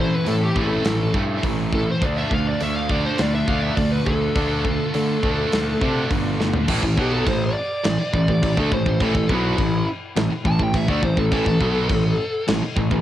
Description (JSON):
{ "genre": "heavy metal", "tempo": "103 BPM", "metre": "4/4", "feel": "straight", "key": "A minor", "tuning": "A4 = 440 Hz", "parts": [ { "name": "smooth overdriven lead guitar", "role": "melody", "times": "0.0-12.5 s", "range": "E4 to A5", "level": "-26 LUFS", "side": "left 1 dB", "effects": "cassette tape" }, { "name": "distorted electric guitar", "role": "riff", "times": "0.0-13.0 s", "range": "A2 to D4", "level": "-27 LUFS", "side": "left 6 dB", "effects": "distortion, cassette tape" }, { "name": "tight distorted guitar", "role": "riff", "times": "0.0-13.0 s", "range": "A2 to D4", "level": "-26 LUFS", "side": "right 7 dB", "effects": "distortion, cassette tape" }, { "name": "tight distorted guitar", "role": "riff", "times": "0.0-13.0 s", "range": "A2 to F4", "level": "-28 LUFS", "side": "equal", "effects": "distortion, cassette tape" }, { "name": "fuzz picked electric bass", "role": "bass", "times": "0.0-13.0 s", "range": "G1 to D3", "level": "-24 LUFS", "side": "equal", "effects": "overdrive" }, { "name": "modern studio drum kit", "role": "drums", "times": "0.3-13.0 s", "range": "crash cymbal, hi-hat, kick drum, snare drum, toms", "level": "-25 LUFS", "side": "equal", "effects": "cassette tape" } ], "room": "studio reverb", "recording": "home recording on cassette", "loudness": "-18 LUFS", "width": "side -12 dB against mid", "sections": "0.0-6.7 A section; 6.7-13.0 B section", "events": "drum fill 6.4; lead electric guitar solo 6.7-13.0", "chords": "0.0 Am; 2.0 Dm; 6.7 A5" }